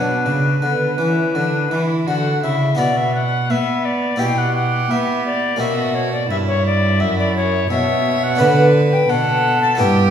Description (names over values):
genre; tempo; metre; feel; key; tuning
classical, baroque-style sonata movement with continuo; 85 BPM; 4/4; straight; B minor; A4 = 439 Hz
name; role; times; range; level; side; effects
alto recorder; melody; 0.0-10.1 s; B4 to A5; -20 LUFS; left 4 dB; none
rich violin; second line; 0.0-10.1 s; B3 to C#5; -22 LUFS; right 3 dB; none
harpsichord; accompaniment; 0.0-10.1 s; F#2 to B4; -22 LUFS; left 1 dB; none
rich cello; bass; 0.0-10.1 s; F#2 to B3; -19 LUFS; right 1 dB; none
room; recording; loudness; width
wet recital hall reverb, RT60 1.6 s; heard from further back in the room; -15 LUFS; side -8 dB against mid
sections
0.0-2.8 A section; 2.8-10.1 B section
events
none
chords
0.0 Bm; 4.2 Em/B; 5.6 F#7; 8.4 Bm/D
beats
0.62 1.34 2.07 | 2.79 3.50 4.20 4.90 | 5.61 6.31 7.01 7.71 | 8.40 9.10 9.80